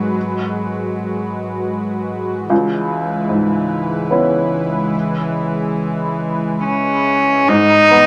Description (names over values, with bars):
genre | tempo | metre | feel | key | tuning
neoclassical piano and strings | 70-77 BPM | 3/4 | rubato | unclear | A4 = 440 Hz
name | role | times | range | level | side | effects
clear cello | second line | 0.0-8.1 s | E3 to D#4 | -20 LUFS | equal | none
clear upright piano | accompaniment | 0.0-8.1 s | C#2 to F#4 | -21 LUFS | equal | none
warm analog pad | sustained chords | 0.0-8.1 s | E3 to B4 | -25 LUFS | equal | chorus
dark double bass | bass | 0.0-8.1 s | G#1 to C#2 | -32 LUFS | equal | none
room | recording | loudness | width
moderate club reverb, RT60 0.7 s | none | -18 LUFS | mono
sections
0.0-7.5 A section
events
none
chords
0.0 G#m7; 2.5 C#m7; 7.5 E/G#